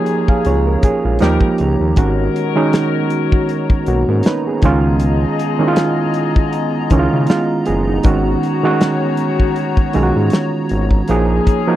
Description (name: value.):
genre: R&B, neo-soul.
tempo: 79 BPM.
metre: 4/4.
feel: swing 55% on 16ths.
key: G# dorian.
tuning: A4 = 440 Hz.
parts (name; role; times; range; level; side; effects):
overdriven reed electric piano; accompaniment; 0.0-11.8 s; D#3 to E#5; -16 LUFS; right 3 dB; none.
hollow soft pad; sustained chords; 0.0-11.8 s; B3 to A#5; -24 LUFS; left 4 dB; chorus.
warm horn section; stabs; 0.0-11.8 s; D#3 to A#4; -25 LUFS; left 20 dB; none.
warm soul drum kit; drums; 0.1-11.7 s; hi-hat, kick drum, snare drum; -14 LUFS; equal; none.
smooth synth bass; bass; 0.5-11.4 s; F#1 to C#3; -17 LUFS; equal; none.
room: light reverb.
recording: dry, close 1970s-style studio recording.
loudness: -13 LUFS.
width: side -13 dB against mid.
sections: 0.0-11.8 A section.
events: none.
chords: 0.0 A#m7; 1.2 D#7; 2.0 G#m11; 4.6 C#13; 8.0 G#m11; 11.1 A#m7.